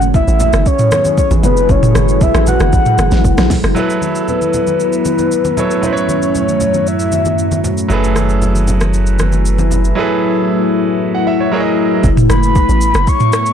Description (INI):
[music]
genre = amapiano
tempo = 116 BPM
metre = 4/4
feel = straight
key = unclear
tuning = A4 = 440 Hz
[part]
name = deep dark ambient pad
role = sustained chords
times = 0.0-13.5 s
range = F#2 to G#5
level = -17 LUFS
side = left 2 dB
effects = chorus, built-in reverb, sidechain pumping
[part]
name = hollow log drum bass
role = bass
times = 0.0-3.8, 12.0-13.1 s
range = F#1 to A#1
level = -14 LUFS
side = equal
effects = none
[part]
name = smooth R&B drum kit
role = drums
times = 0.0-13.5 s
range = hi-hat, kick drum, rim click, shaker, snare drum, toms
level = -16 LUFS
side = right 1 dB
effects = overdrive
[part]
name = congas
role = percussion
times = 0.1-9.8 s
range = none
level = -22 LUFS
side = left 2 dB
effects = none
[part]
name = soft octave-layered synth lead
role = melody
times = 0.2-7.6, 12.3-13.5 s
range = B4 to C#6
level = -16 LUFS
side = left 2 dB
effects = chorus, phaser, ping-pong delay
[part]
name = bright concert grand piano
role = accompaniment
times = 3.7-12.1 s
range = F#3 to F#5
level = -18 LUFS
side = right 4 dB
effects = none
[part]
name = punchy sub bass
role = bass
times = 7.9-9.9 s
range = F#1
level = -14 LUFS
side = equal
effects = none
[sound]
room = little or no reverb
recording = blown-out, overdriven recording, overdrive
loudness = -11 LUFS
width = side -8 dB against mid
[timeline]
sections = 0.0-3.8 A section; 3.8-12.0 B section; 12.0-13.5 A section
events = drop 0.0-3.8, 12.0-13.5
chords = 0.0 F#m11; 3.2 F#7; 3.8 B9sus4/F#; 7.9 F#m11; 11.5 F#13; 12.0 B9sus4/F#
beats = 0.14 0.66 1.18 | 1.69 2.21 2.73 3.25 | 3.76 4.28 4.80 5.31 | 5.83 6.35 6.87 7.38 | 7.90 8.42 8.94 9.45 | 9.97 10.49 11.00 11.52 | 12.04 12.56 13.07